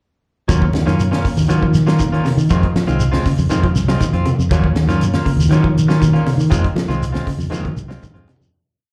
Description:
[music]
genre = afrobeat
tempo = 120 BPM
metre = 4/4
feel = straight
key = Eb dorian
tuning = A4 = 442 Hz
[part]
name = clean electric guitar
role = arpeggios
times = 0.5-8.4 s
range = C3 to Gb3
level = -23 LUFS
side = equal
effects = warbly pitch drift
[part]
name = electric guitar at the edge of break-up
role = stabs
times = 0.5-8.3 s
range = Eb3 to F4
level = -25 LUFS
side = equal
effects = slapback echo
[part]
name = fingered electric bass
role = bass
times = 0.5-8.5 s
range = C2 to F3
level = -19 LUFS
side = equal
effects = none
[part]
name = tight funk drum kit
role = drums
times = 0.5-8.4 s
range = hi-hat, kick drum, snare drum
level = -23 LUFS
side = equal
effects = none
[part]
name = congas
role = percussion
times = 0.5-8.6 s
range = none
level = -27 LUFS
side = equal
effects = none
[part]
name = shekere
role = percussion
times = 0.5-8.5 s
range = none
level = -28 LUFS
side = equal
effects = none
[sound]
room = light reverb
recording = live gig heard through the venue's PA, club reverb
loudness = -16 LUFS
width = mono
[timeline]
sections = 0.5-8.5 groove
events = fade-out 6.5-8.5; drum fill 7.5-8.5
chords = 0.5 Ebm9; 2.5 Fm7; 4.5 Ebm9; 6.5 Fm7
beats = | 0.50 1.00 1.50 2.00 | 2.50 3.00 3.51 4.01 | 4.51 5.01 5.51 6.01 | 6.52 7.02 7.52 8.03

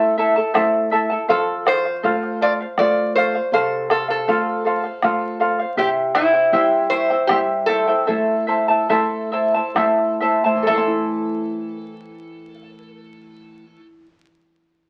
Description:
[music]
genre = andean folk, Andean ensemble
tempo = 64-80 BPM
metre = 3/4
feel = straight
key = A minor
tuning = A4 = 440 Hz
[part]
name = metal-body resonator slide guitar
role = melody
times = 0.0-13.9 s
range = E4 to D5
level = -23 LUFS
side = equal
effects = none
[part]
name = charango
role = accompaniment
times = 0.0-14.3 s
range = E4 to A5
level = -21 LUFS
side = equal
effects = none
[part]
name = nylon-string guitar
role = accompaniment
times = 0.0-14.1 s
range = F2 to F4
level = -31 LUFS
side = equal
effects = none
[part]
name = bombo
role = percussion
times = 0.4-11.1 s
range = none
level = -28 LUFS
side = equal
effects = none
[sound]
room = moderate club reverb, RT60 0.7 s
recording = very old 78 rpm record, vinyl crackle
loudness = -19 LUFS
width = mono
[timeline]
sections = 0.0-10.7 A section; 10.7-13.5 B section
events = slowing down 5.8-10.7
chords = 0.0 Am; 1.3 F; 5.8 C; 8.1 Am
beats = 0.55 | 1.29 2.04 2.79 | 3.53 4.28 5.03 | 5.78 6.53 7.29 | 8.08 8.90 9.76 | 10.66 11.60 12.54

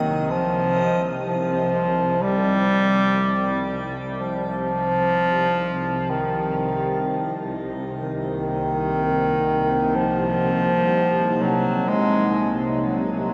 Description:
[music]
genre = ambient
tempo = 62 BPM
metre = 4/4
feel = straight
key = C minor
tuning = A4 = 440 Hz
[part]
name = warm bass clarinet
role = melody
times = 0.0-13.3 s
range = Eb3 to Ab3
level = -23 LUFS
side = equal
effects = shimmer reverb, tape echo
[part]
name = dark analog pad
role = sustained chords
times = 0.0-13.3 s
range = Bb3 to Gb5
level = -32 LUFS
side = equal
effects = chorus
[part]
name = bowed-like drone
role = drone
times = 0.0-13.3 s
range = C2 to C3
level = -31 LUFS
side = equal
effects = built-in reverb
[sound]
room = wet huge ambient reverb, RT60 8.4 s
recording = none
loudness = -22 LUFS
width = mono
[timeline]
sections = 0.3-13.3 A section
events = fade-in on analog synth pad 0.3-13.3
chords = 0.3 Cm; 8.0 Ebm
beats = | 0.29 1.25 2.22 3.19 | 4.16 5.13 6.09 7.06 | 8.03 9.00 9.96 10.93 | 11.90 12.87

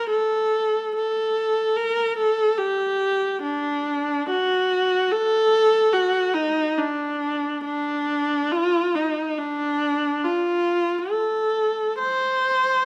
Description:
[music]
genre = classical, free, expressive piece for unaccompanied viola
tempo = 71 BPM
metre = 4/4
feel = uneven beats, rubato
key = unclear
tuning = A4 = 439 Hz
[part]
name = warm viola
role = solo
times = 0.0-12.8 s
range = D4 to C5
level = -22 LUFS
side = equal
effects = none
[sound]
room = light reverb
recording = close, detailed microphones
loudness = -23 LUFS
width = mono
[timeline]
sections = 0.0-12.8 A section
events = none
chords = none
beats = | 0.10 0.95 1.77 2.58 | 3.44 4.29 5.11 5.93 | 6.79 7.65 8.53 9.39 | 10.24 11.12 12.00

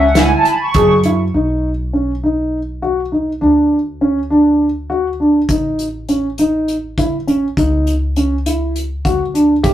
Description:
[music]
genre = progressive instrumental, band music in an uneven meter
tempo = 202 BPM (eighths)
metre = 7/8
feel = straight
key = unclear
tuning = A4 = 441 Hz
[part]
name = hollow soft pad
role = accompaniment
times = 0.0-0.9 s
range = F#5 to C#6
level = -15 LUFS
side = right 1 dB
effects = chorus
[part]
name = dark concert grand piano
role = arpeggios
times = 0.0-9.7 s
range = C#4 to G#4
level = -14 LUFS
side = equal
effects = none
[part]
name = upright bass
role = bass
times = 0.0-9.7 s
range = G1 to F#2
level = -21 LUFS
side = equal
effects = none
[part]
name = unplugged drum kit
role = drums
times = 0.2-1.2, 5.5-9.7 s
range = hi-hat, kick drum, snare drum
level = -19 LUFS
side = equal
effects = none
[sound]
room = moderate studio reverb, RT60 0.6 s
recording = rough rehearsal-room recording, tube saturation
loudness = -13 LUFS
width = side -12 dB against mid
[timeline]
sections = 0.0-1.3 A section; 1.3-9.6 B section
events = analog synth pad solo 0.0-1.3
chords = 0.0 C#m; 1.3 B; 3.4 N.C.; 5.5 A; 7.6 C#m; 9.0 D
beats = 0.16 0.45 0.75 1.04 | 1.34 1.64 1.93 2.23 2.52 2.82 3.12 | 3.41 3.71 4.01 4.30 4.60 4.90 5.19 | 5.49 5.79 6.08 6.38 6.67 6.97 7.27 | 7.57 7.86 8.16 8.45 8.75 9.05 9.34 | 9.64

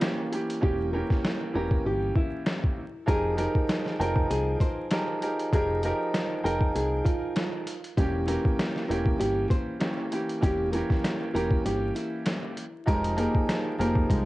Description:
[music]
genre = hip hop, boom-bap hip-hop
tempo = 98 BPM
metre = 4/4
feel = swing 54% on 16ths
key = F minor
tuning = A4 = 439 Hz
[part]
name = nylon-string guitar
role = melody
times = 0.0-14.3 s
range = Ab3 to C5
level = -32 LUFS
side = equal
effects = high-pass filter, low-pass filter, cassette tape, tape echo
[part]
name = clear upright piano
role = accompaniment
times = 0.0-14.3 s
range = E3 to G5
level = -29 LUFS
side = right 1 dB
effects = high-pass filter, low-pass filter, cassette tape
[part]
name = boom bap sampler-style drum kit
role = drums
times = 0.0-14.3 s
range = hi-hat, kick drum, snare drum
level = -28 LUFS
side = equal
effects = vintage 12-bit sampler grit
[part]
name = finger snaps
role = percussion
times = 0.0-13.6 s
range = none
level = -46 LUFS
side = left 4 dB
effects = none
[part]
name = deep dub fingered electric bass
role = bass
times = 0.6-14.3 s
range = E1 to C2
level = -31 LUFS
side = equal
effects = none
[sound]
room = small room ambience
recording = home recording on cassette, vinyl crackle, nothing above 10.3 kHz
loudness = -24 LUFS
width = side -18 dB against mid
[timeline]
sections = 0.0-12.9 A section; 12.9-14.3 B section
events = hi-hats muted 0.6-3.1; break 11.7-12.9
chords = 0.0 Edim7; 3.1 Fm11; 8.0 Edim7; 12.9 Fm11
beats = 0.02 | 0.63 1.24 1.85 2.47 | 3.08 3.69 4.30 4.92 | 5.53 6.14 6.75 7.36 | 7.98 8.59 9.20 9.81 | 10.43 11.04 11.65 12.26 | 12.87 13.49 14.10

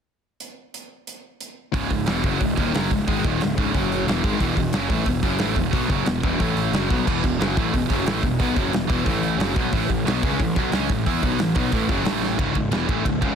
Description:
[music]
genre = heavy metal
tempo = 180 BPM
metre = 4/4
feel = straight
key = unclear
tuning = A4 = 440 Hz
[part]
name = big rock drum kit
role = drums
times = 0.4-13.3 s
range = crash cymbal, hi-hat, kick drum, ride cymbal, snare drum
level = -25 LUFS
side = equal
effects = none
[part]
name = heavy high-gain guitar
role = riff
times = 1.7-13.3 s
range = C#2 to E4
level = -25 LUFS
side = right 12 dB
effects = distortion
[part]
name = sludgy distorted guitar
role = riff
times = 1.7-13.3 s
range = C#2 to E4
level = -25 LUFS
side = left 12 dB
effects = overdrive
[part]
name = fuzz picked electric bass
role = bass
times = 1.7-13.3 s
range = C#1 to E2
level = -28 LUFS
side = equal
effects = overdrive
[sound]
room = small room ambience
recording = dense, heavily limited modern master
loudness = -19 LUFS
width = side -7 dB against mid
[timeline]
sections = 0.4-1.7 A section; 1.7-12.4 B section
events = drum fill 12.2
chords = 0.4 N.C.; 1.7 C#m; 3.7 F#5; 4.1 Emaj7; 4.4 E5; 6.4 A5; 6.7 E5; 9.1 A5; 9.4 F#sus4; 9.7 A5; 12.4 C#m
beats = | 0.40 0.74 1.07 1.40 | 1.74 2.07 2.40 2.74 | 3.07 3.40 3.74 4.07 | 4.41 4.74 5.07 5.41 | 5.74 6.07 6.41 6.74 | 7.07 7.41 7.74 8.07 | 8.40 8.74 9.07 9.40 | 9.73 10.07 10.40 10.73 | 11.06 11.40 11.73 12.06 | 12.39 12.73 13.06

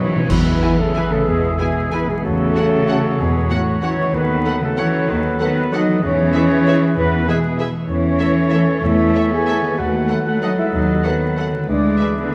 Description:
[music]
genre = classical, orchestral ballroom waltz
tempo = 190 BPM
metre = 3/4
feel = uneven beats, rubato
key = E major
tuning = A4 = 440 Hz
[part]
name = mellow clarinet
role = second line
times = 0.0-12.3 s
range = F#4 to B4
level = -31 LUFS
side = equal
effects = none
[part]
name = mellow hollow large flute ensemble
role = second line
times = 0.0-12.3 s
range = F#4 to G#5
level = -30 LUFS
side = equal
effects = none
[part]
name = warm oboe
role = second line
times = 0.0-12.3 s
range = B4 to E5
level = -32 LUFS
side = equal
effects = none
[part]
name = clear symphonic viola section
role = accompaniment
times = 0.0-12.1 s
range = F#3 to A4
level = -33 LUFS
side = equal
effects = none
[part]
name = warm bassoon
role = accompaniment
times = 0.0-12.3 s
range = E3 to F#3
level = -31 LUFS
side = equal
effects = none
[part]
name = clear trombone section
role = sustained chords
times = 0.0-12.1 s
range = E3 to E4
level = -32 LUFS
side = equal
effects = none
[part]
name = dark French horn section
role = sustained chords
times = 0.0-12.3 s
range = F#3 to G#4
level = -25 LUFS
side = equal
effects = none
[part]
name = concert harp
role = arpeggios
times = 0.0-12.3 s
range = B2 to D#5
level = -29 LUFS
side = equal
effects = none
[part]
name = mellow trumpet section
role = stabs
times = 0.0-12.3 s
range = F#4 to G#5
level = -28 LUFS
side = equal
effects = none
[part]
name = warm symphonic cello section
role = bass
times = 0.0-12.3 s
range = A2 to B3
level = -24 LUFS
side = equal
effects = none
[part]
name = timpani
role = percussion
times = 0.0-0.2, 6.0-6.5 s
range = E2 to B2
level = -29 LUFS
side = equal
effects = none
[part]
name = warm symphonic double bass section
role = bass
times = 0.3-11.9 s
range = D2 to E2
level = -26 LUFS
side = equal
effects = none
[part]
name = clash cymbals and concert bass drum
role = percussion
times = 0.3-0.9 s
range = none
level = -29 LUFS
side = equal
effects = none
[part]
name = clear symphonic violin section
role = melody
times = 0.6-12.1 s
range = E5 to G#5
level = -36 LUFS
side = equal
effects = none
[part]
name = warm symphonic violin section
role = second line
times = 0.6-12.1 s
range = none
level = barely audible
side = none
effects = none
[sound]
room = wet scoring stage reverb, RT60 1.8 s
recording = vinyl crackle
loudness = -17 LUFS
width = mono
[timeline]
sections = 0.3-12.3 A section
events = timpani fill 0.0; band accent 0.3-0.6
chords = 0.3 E; 2.2 F#m7/E; 4.1 B7/D#; 6.0 E; 7.9 A/E; 9.8 B7/D#; 11.7 E7/D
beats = | 0.29 0.62 0.95 | 1.26 1.59 1.92 | 2.24 2.55 2.88 | 3.19 3.50 3.82 | 4.13 4.45 4.78 | 5.08 5.40 5.72 | 6.02 6.33 6.66 | 6.96 7.27 7.59 | 7.89 8.20 8.52 | 8.83 9.15 9.48 | 9.79 10.09 10.41 | 10.73 11.04 11.37 | 11.68 12.00 12.33

